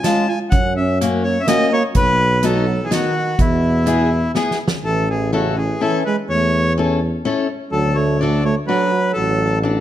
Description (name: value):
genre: alpine folk, alpine dance band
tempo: 125 BPM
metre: 3/4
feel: straight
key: E major, A major from 4.8 s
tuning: A4 = 438 Hz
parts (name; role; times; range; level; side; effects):
- accordion; melody; 0.0-9.6 s; E4 to A5; -20 LUFS; left 1 dB; none
- clear euphonium; second line; 0.0-9.6 s; B2 to E#4; -22 LUFS; right 5 dB; none
- picked steel-string acoustic guitar; accompaniment; 0.0-9.8 s; G#3 to A4; -21 LUFS; left 3 dB; none
- natural country drum kit; drums; 0.0-4.8 s; hi-hat, kick drum, snare drum; -20 LUFS; right 1 dB; none
- warm tuba; bass; 0.5-9.8 s; A1 to F#2; -20 LUFS; equal; none
room: moderate recital hall reverb, RT60 1.6 s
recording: dark, warm production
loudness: -15 LUFS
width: side -12 dB against mid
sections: 0.0-4.8 A section; 4.8-9.8 B section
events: drum fill 4.3-4.8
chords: 0.0 C#; 0.5 F#; 2.0 B; 3.4 E; 4.8 A; 7.7 D